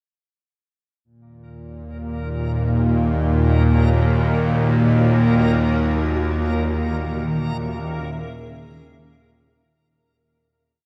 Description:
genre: dark ambient drone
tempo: free time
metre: none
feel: none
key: Eb phrygian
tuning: A4 = 440 Hz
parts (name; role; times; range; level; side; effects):
- bowed-like drone; drone; 1.9-9.9 s; Eb2 to Bb2; -20 LUFS; equal; built-in reverb
- granular cloud pad; sustained chords; 2.8-9.8 s; Eb3 to Fb5; -33 LUFS; equal; built-in reverb
- backwards swelling texture; texture; 2.1-9.8 s; Bb3 to Bb4; -33 LUFS; equal; built-in reverb
room: moderate huge ambient reverb, RT60 7.8 s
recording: none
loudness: -19 LUFS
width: mono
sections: 1.0-9.8 A section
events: fade-in on ambient pad 1.0-9.8; fade-in on synth texture 1.0-9.8; fade-out 5.4-9.8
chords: 1.0 Ebm; 5.4 Dbm/Eb

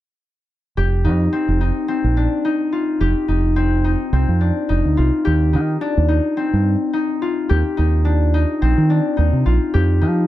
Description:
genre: afrobeat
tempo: 107 BPM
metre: 4/4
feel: straight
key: unclear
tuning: A4 = 440 Hz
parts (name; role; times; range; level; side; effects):
- concert harp; arpeggios; 0.8-10.3 s; C4 to G4; -19 LUFS; left 3 dB; none
- deep dub fingered electric bass; bass; 0.8-10.2 s; F1 to F3; -16 LUFS; right 1 dB; none
room: little or no reverb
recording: dry, close 1970s-style studio recording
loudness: -15 LUFS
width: side -14 dB against mid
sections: 0.8-10.3 A section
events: none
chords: 0.8 F7sus2; 5.3 Ebmaj9; 9.7 F7sus2

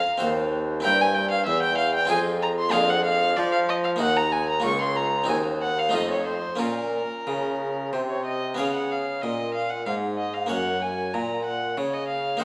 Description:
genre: classical, baroque-style sonata movement with continuo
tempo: 94 BPM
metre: 3/4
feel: straight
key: Bb minor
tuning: A4 = 440 Hz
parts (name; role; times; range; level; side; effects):
- dark violin; melody; 0.0-12.4 s; Bb4 to Db6; -28 LUFS; equal; none
- harpsichord; accompaniment; 0.0-12.4 s; Db2 to Db5; -31 LUFS; equal; none
- warm bassoon; bass; 0.2-12.4 s; Db2 to F3; -30 LUFS; equal; none
room: wet recital hall reverb, RT60 1.7 s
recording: none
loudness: -25 LUFS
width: mono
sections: 0.0-8.6 A section; 8.6-12.4 A section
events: none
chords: 0.2 Cdim/Eb; 0.9 C7/G; 2.1 Fm; 2.7 Bb7/F; 4.0 Ebm; 4.6 Bbm/Db; 5.3 Cdim/Eb; 5.9 F7; 6.6 Bbm; 8.6 Db5; 10.5 Gb

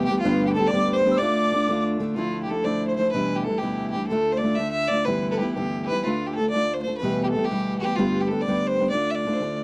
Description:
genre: celtic folk, Celtic jig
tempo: 124 BPM (dotted quarters)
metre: 6/8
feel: straight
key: D dorian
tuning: A4 = 440 Hz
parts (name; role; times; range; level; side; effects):
- rich fiddle; melody; 0.0-9.6 s; F4 to E5; -27 LUFS; equal; none
- breathy mid whistle; second line; 0.0-1.8 s; F5 to E6; -32 LUFS; equal; none
- fingerpicked steel-string acoustic guitar; accompaniment; 0.0-9.6 s; E2 to G4; -27 LUFS; equal; none
- rich cello; drone; 0.0-9.6 s; D2; -35 LUFS; equal; none
room: light reverb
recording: dry, close 1970s-style studio recording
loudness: -24 LUFS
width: mono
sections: 0.0-2.2 A section; 2.2-9.6 A section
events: none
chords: 0.2 G; 1.2 Dm; 2.2 Dmadd9; 3.1 Em7; 4.1 Dm; 5.1 G6; 6.0 Dm; 7.0 Em; 8.0 G; 8.9 Dm

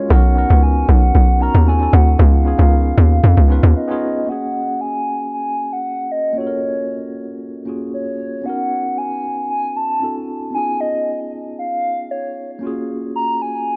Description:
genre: amapiano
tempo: 115 BPM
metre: 4/4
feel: straight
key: unclear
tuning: A4 = 440 Hz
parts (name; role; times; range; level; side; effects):
- hollow clarinet-like synth lead; melody; 0.0-13.8 s; C#5 to A#5; -24 LUFS; equal; chorus, digital delay
- tine electric piano; accompaniment; 0.0-13.8 s; G#3 to C#5; -26 LUFS; equal; none
- hollow log drum bass; bass; 0.1-3.7 s; B1 to E#2; -13 LUFS; equal; none
room: little or no reverb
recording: none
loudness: -17 LUFS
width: mono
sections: 0.0-4.3 A section; 4.3-13.8 B section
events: drop 0.0-4.3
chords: 0.1 Bmaj7; 1.7 D9; 2.2 C#9; 4.3 F#maj9; 8.5 Bmaj7; 10.0 D9; 10.5 C#9; 12.6 F#maj9

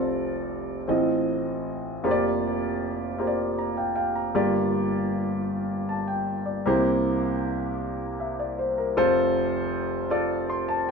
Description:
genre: gospel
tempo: 52 BPM (dotted quarters)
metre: 6/8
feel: straight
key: F major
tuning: A4 = 441 Hz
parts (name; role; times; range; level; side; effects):
- warm concert grand piano; solo; 0.0-10.9 s; F1 to C6; -23 LUFS; equal; none
room: wet small room reverb, RT60 0.5 s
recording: band playing live in one room, nothing above 10.7 kHz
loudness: -23 LUFS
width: side -5 dB against mid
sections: 0.0-9.0 A section; 9.0-10.9 B section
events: grand piano fill 3.2-4.3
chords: 0.0 F6; 0.9 F7/A; 2.0 Bb6/F; 4.3 Gm7; 6.7 C7; 9.0 F

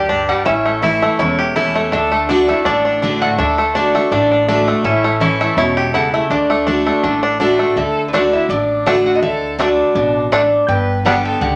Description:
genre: bluegrass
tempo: 164 BPM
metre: 4/4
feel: swing 54% on 8ths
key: D major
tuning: A4 = 438 Hz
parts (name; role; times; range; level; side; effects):
- lap resonator guitar; melody; 0.0-11.6 s; A4 to G5; -22 LUFS; equal; none
- dark fiddle; second line; 0.0-11.6 s; A3 to B4; -24 LUFS; equal; none
- picked steel-string acoustic guitar; accompaniment; 0.0-11.6 s; E2 to G4; -21 LUFS; equal; none
- bluegrass banjo; arpeggios; 0.0-11.1 s; G3 to G4; -19 LUFS; equal; none
- upright bass; bass; 0.0-11.6 s; E1 to D2; -28 LUFS; equal; none
room: wet studio ambience, RT60 0.4 s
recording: none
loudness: -15 LUFS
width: mono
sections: 0.0-7.8 A section; 7.8-11.6 A section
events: none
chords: 0.5 A; 1.9 D; 4.8 A; 6.3 D; 10.7 G

